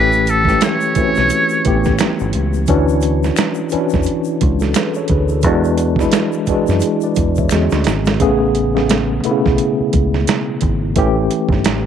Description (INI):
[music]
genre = R&B, neo-soul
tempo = 87 BPM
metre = 4/4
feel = swing 58% on 16ths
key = A major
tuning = A4 = 440 Hz
[part]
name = trumpet with metal mute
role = melody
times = 0.0-2.0 s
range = A4 to C#5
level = -16 LUFS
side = equal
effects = tape echo
[part]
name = tine electric piano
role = accompaniment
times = 0.0-11.9 s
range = B2 to E5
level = -17 LUFS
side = left 1 dB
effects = overdrive, fast stereo tremolo
[part]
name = deep dub fingered electric bass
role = bass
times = 0.0-11.9 s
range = G1 to F#2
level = -18 LUFS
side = left 1 dB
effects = none
[part]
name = tube shaker and finger snaps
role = percussion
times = 0.1-8.2 s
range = none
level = -32 LUFS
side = left 15 dB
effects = none
[part]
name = boom bap sampler-style drum kit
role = drums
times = 0.3-11.8 s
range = hi-hat, kick drum, snare drum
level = -18 LUFS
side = right 3 dB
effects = none
[sound]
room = light reverb, small room ambience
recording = 1960s-style stereo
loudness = -13 LUFS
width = side -8 dB against mid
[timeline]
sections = 0.0-8.2 A section; 8.2-11.9 B section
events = drum fill 7.5-8.2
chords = 0.0 A7; 2.7 Dmaj9; 5.4 E9; 7.5 E13; 8.2 Amaj9; 11.0 A7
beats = 0.61 1.30 1.99 | 2.68 3.37 4.06 4.75 | 5.44 6.13 6.82 7.51 | 8.20 8.89 9.58 10.27 | 10.96 11.65